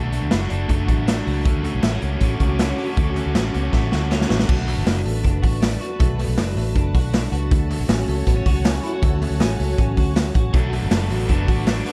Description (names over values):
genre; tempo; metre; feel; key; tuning
jangly indie pop; 159 BPM; 4/4; straight; B minor; A4 = 440 Hz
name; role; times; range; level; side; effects
biting overdriven guitar; accompaniment; 0.0-5.0, 10.5-11.9 s; B2 to F#4; -31 LUFS; equal; none
twelve-string electric guitar; arpeggios; 0.0-11.9 s; A3 to F#4; -31 LUFS; equal; tape echo
vintage muted fingered electric bass; bass; 0.0-11.8 s; F#1 to D2; -25 LUFS; equal; none
raw garage drum kit; drums; 0.1-11.9 s; crash cymbal, hi-hat, kick drum, snare drum; -23 LUFS; equal; none
string machine, full ensemble; sustained chords; 1.5-11.9 s; C#4 to D6; -32 LUFS; equal; ensemble chorus
group handclap; percussion; 1.6-11.8 s; none; -41 LUFS; equal; none
room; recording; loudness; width
little or no reverb; dark, warm production; -20 LUFS; mono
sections
0.0-4.5 A section; 4.5-11.9 B section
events
drum fill 3.7-4.5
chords
0.0 Bm7; 1.5 Dmaj7; 4.5 Bm7; 7.5 Dmaj7; 10.5 Bm7